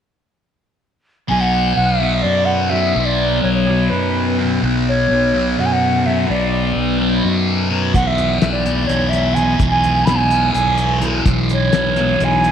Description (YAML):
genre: psychedelic rock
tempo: 253 BPM (eighths)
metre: 7/8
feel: straight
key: B dorian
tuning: A4 = 440 Hz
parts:
  - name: mellow jazz flute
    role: melody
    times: 1.3-12.5 s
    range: B4 to B5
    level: -18 LUFS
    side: right 1 dB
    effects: slapback echo
  - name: thick fuzz guitar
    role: riff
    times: 1.3-12.5 s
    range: E2 to B3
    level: -18 LUFS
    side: left 1 dB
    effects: distortion, phaser
  - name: fuzz fingered electric bass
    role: bass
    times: 1.3-12.5 s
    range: B1 to F#2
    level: -20 LUFS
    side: equal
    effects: overdrive
  - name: cloth-damped thuddy drum kit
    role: drums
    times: 7.9-12.5 s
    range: hi-hat, kick drum, snare drum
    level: -19 LUFS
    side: left 2 dB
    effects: none
  - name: congas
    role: percussion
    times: 7.9-12.4 s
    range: none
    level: -32 LUFS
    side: right 10 dB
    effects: none
room: moderate echo chamber reverb, RT60 1.9 s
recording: 1960s-style stereo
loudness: -14 LUFS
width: side -8 dB against mid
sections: 1.3-12.5 A section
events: none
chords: 1.3 B5; 8.0 E6/B